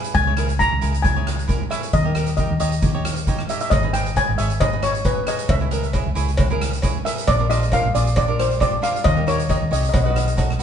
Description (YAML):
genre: calypso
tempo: 135 BPM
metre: 4/4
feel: swing 53% on 16ths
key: unclear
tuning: A4 = 441 Hz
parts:
  - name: steel pan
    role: melody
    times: 0.0-10.3 s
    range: B4 to A#5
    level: -22 LUFS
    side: left 1 dB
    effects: tape echo
  - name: cavaquinho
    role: accompaniment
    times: 0.0-10.6 s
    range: D4 to E5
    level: -29 LUFS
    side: right 4 dB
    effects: none
  - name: street-band drum kit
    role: drums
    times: 0.0-10.6 s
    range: hi-hat, kick drum, rim click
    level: -22 LUFS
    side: equal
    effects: none
  - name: hollow-body short-scale fingered electric bass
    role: bass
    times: 0.2-10.6 s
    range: G#1 to D#2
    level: -22 LUFS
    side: equal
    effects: none
  - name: cowbell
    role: percussion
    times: 3.7-10.5 s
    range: none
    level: -30 LUFS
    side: left 1 dB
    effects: none
room: moderate stone room reverb, RT60 1.3 s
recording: band playing live in one room, nothing above 10.5 kHz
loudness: -17 LUFS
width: side -8 dB against mid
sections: 0.0-10.6 A section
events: none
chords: 0.1 C#m; 1.9 D#; 3.7 G#m; 5.5 C#m; 7.3 A#; 9.1 D#; 9.9 B7